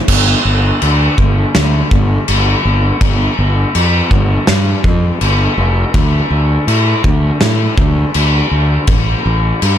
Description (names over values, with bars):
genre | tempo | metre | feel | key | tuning
rock, shoegaze and dream pop | 82 BPM | 4/4 | straight | unclear | A4 = 440 Hz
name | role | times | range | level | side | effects
fuzz fingered electric bass | bass | 0.1-9.8 s | F1 to A2 | -13 LUFS | equal | overdrive
loose indie drum kit | drums | 0.1-9.8 s | crash cymbal, kick drum, snare drum | -14 LUFS | equal | none
room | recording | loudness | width
little or no reverb | none | -10 LUFS | side -10 dB against mid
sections
0.1-9.8 A section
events
none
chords
none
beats
| 0.08 0.81 1.55 2.28 | 3.01 3.74 4.48 5.21 | 5.94 6.68 7.41 8.15 | 8.88 9.62